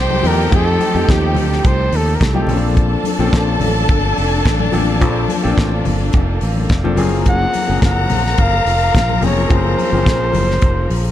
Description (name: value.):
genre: disco.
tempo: 107 BPM.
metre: 4/4.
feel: straight.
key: Bb major.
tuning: A4 = 440 Hz.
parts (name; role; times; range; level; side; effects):
warm flugelhorn; melody; 0.0-2.5, 7.3-11.1 s; G4 to Gb5; -19 LUFS; right 1 dB; none.
warm studio string section; second line; 0.0-11.1 s; G4 to Bb5; -23 LUFS; left 2 dB; none.
warm concert grand piano; accompaniment; 0.0-11.1 s; F3 to A4; -21 LUFS; left 3 dB; none.
clear studio string section; sustained chords; 0.0-11.1 s; F3 to A4; -25 LUFS; equal; none.
fingered electric bass; bass; 0.0-11.1 s; F1 to F2; -18 LUFS; equal; none.
congas; percussion; 0.1-11.0 s; none; -25 LUFS; left 5 dB; none.
damped 70s drum kit; drums; 0.2-11.0 s; hi-hat, kick drum, snare drum; -18 LUFS; equal; none.
room: studio ambience.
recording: dark, warm production.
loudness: -13 LUFS.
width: side -12 dB against mid.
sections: 0.0-11.1 A section.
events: none.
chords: 0.0 F9; 2.5 Bbmaj9; 7.0 Gbmaj9#11.